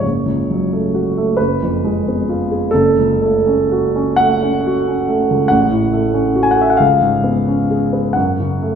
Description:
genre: classical, romantic nocturne for solo piano.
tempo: 39-48 BPM (dotted quarters).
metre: 12/8.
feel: rubato.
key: F# minor.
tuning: A4 = 440 Hz.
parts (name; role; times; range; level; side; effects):
warm concert grand piano; solo; 0.0-8.8 s; F#1 to G#5; -13 LUFS; equal; none.
room: wet recital hall reverb, RT60 1.8 s.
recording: recorded in a church or concert hall.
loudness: -13 LUFS.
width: side -7 dB against mid.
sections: 0.0-8.8 A section.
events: none.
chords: 0.0 F#m; 1.4 Fdim/F#; 2.7 F#m; 5.5 F#m/A; 6.8 C#7; 8.2 F#m.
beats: | 0.04 1.39 2.71 4.18 | 5.51 6.79 8.16.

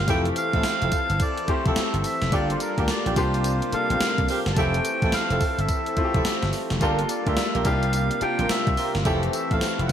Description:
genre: R&B, new jack swing.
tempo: 107 BPM.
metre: 4/4.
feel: swing 63% on 16ths.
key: unclear.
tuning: A4 = 440 Hz.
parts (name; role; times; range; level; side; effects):
melodica; melody; 0.0-9.9 s; A4 to A5; -28 LUFS; equal; tape echo.
clear concert grand piano; accompaniment; 0.0-9.9 s; E3 to A4; -29 LUFS; left 3 dB; none.
lush unison pad; sustained chords; 0.0-9.9 s; C3 to A4; -31 LUFS; equal; chorus.
vintage slap bass; bass; 0.0-9.9 s; F1 to D2; -26 LUFS; equal; none.
mellow horn section; stabs; 0.1-9.9 s; Bb3 to Bb4; -30 LUFS; right 2 dB; tape echo.
gated 80s digital drum machine; drums; 0.1-9.9 s; hi-hat, kick drum, snare drum, tambourine; -26 LUFS; equal; gated reverb, gated reverb snare.
room: moderate lush hall reverb, RT60 1.6 s.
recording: dreamy mix soaked in reverb.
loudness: -21 LUFS.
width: side -9 dB against mid.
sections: 0.0-9.9 A section.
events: none.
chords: 0.1 Fmaj7; 2.3 Gm7; 3.2 C7sus4; 4.6 Fmaj7; 6.8 Gm7; 7.7 C7sus4; 9.1 Fmaj7.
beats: | 0.08 0.64 1.20 1.76 | 2.33 2.88 3.45 4.01 | 4.57 5.13 5.69 6.25 | 6.81 7.37 7.93 8.49 | 9.05 9.61.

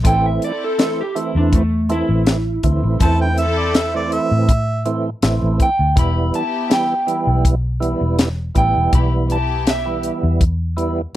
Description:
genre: straight-eighth soul blues.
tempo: 81 BPM.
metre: 4/4.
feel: swing 54% on 16ths.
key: E minor.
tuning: A4 = 440 Hz.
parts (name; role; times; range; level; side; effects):
percussive tonewheel organ; accompaniment; 0.0-11.0 s; E3 to E4; -22 LUFS; right 4 dB; slow rotary speaker, overdrive, chorus vibrato.
rich symphonic string section; sustained chords; 0.0-10.0 s; B3 to A4; -26 LUFS; left 2 dB; none.
vintage muted fingered electric bass; bass; 0.0-11.0 s; E1 to A2; -18 LUFS; equal; none.
tight funk drum kit; drums; 0.0-11.0 s; hi-hat, kick drum, snare drum; -17 LUFS; left 1 dB; none.
electric guitar through a small old amp; melody; 0.1-10.4 s; A3 to B5; -20 LUFS; right 1 dB; none.
mellow harmonica; second line; 3.0-4.8 s; D5 to A5; -21 LUFS; right 3 dB; overdrive.
room: little or no reverb.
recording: dry, close 1970s-style studio recording.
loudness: -15 LUFS.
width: side -14 dB against mid.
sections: 0.0-11.2 A section.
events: none.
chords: 0.0 Am; 6.0 Em.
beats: | 0.04 0.79 1.52 2.27 | 3.00 3.75 4.49 5.23 | 5.97 6.71 7.45 8.19 | 8.93 9.67 10.41.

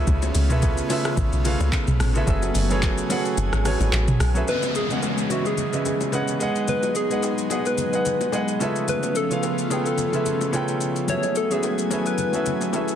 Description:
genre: amapiano.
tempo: 109 BPM.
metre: 4/4.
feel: swing 55% on 16ths.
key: unclear.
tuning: A4 = 440 Hz.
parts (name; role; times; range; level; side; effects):
warm baby grand piano; accompaniment; 0.0-13.0 s; C#3 to G5; -26 LUFS; right 2 dB; none.
airy breathy pad; sustained chords; 0.0-13.0 s; C#3 to G#5; -28 LUFS; equal; chorus, sidechain pumping.
deep log drum bass; bass; 0.0-4.4 s; F#1 to C#2; -22 LUFS; equal; none.
smooth R&B drum kit; drums; 0.1-13.0 s; handclaps, hi-hat, kick drum, rim click, shaker, toms; -27 LUFS; equal; vintage 12-bit sampler grit.
congas and bongos; percussion; 0.1-12.9 s; none; -33 LUFS; left 9 dB; none.
soft struck synth lead; melody; 4.5-13.0 s; F#4 to C#5; -26 LUFS; left 1 dB; chorus, digital delay.
downlifter; sound effects; 4.5-8.9 s; none; -32 LUFS; equal; none.
room: moderate digital room reverb, RT60 1.1 s.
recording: dense, heavily limited modern master.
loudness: -20 LUFS.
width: side -9 dB against mid.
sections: 0.0-4.5 A section; 4.5-13.0 B section.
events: drop 0.0-4.5; kick muted 3.4-4.5.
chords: 0.0 C#7alt; 2.3 F#m11; 4.5 C#m7; 6.4 G#m7; 8.6 C#7alt; 11.1 F#m11.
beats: | 0.07 0.62 1.17 1.73 | 2.27 2.83 3.38 3.93 | 4.48 5.03 5.58 6.13 | 6.68 7.23 7.78 8.33 | 8.88 9.43 9.98 10.53 | 11.08 11.63 12.18 12.73.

